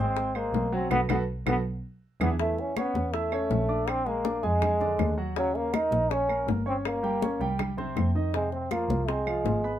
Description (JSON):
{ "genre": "Afro-Cuban jazz", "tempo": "162 BPM", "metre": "4/4", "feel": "straight", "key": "unclear", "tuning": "A4 = 441 Hz", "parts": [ { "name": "trombone with cup mute", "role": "melody", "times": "0.0-9.8 s", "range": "Gb3 to Eb4", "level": "-28 LUFS", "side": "equal", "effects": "none" }, { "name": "warm concert grand piano", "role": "accompaniment", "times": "0.0-9.8 s", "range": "C3 to E6", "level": "-32 LUFS", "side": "right 2 dB", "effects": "none" }, { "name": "clear double bass", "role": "bass", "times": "0.0-9.8 s", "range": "G1 to F2", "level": "-30 LUFS", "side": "right 1 dB", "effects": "none" }, { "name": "bongos", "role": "percussion", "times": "0.2-9.6 s", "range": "none", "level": "-35 LUFS", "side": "left 11 dB", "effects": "none" }, { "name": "congas", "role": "percussion", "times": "0.2-9.8 s", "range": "none", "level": "-35 LUFS", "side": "left 2 dB", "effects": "none" }, { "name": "claves", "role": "percussion", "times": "0.4-9.5 s", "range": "none", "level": "-38 LUFS", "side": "right 8 dB", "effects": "none" } ], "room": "light reverb", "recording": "minimal, uncompressed stereo recording", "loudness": "-25 LUFS", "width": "side -11 dB against mid", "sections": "0.0-2.4 A section; 2.4-9.8 B section", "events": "band accent 0.9-2.4; drum fill 1.3-2.4", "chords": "0.0 Dbmaj7(no3) (rootless); 0.9 Cb5; 1.7 E7; 2.4 Aadd9; 3.9 Bb7b13; 5.4 Eb5; 6.9 Gdim; 7.6 C5; 8.3 Fm" }